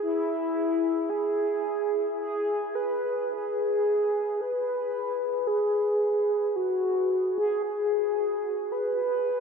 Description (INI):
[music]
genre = ambient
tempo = 55 BPM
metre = 4/4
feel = straight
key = unclear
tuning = A4 = 440 Hz
[part]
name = mellow horn-like synth lead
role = melody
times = 0.0-9.4 s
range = E4 to B4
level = -24 LUFS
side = equal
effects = lush chorus, tape echo
[part]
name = quartz singing bowl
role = arpeggios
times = 0.0-1.2 s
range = none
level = barely audible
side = none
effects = none
[sound]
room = wet huge ambient reverb, RT60 8.5 s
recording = none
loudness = -24 LUFS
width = side -5 dB against mid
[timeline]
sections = 0.0-4.4 A section; 4.4-9.4 B section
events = none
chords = 0.0 E; 4.4 G#m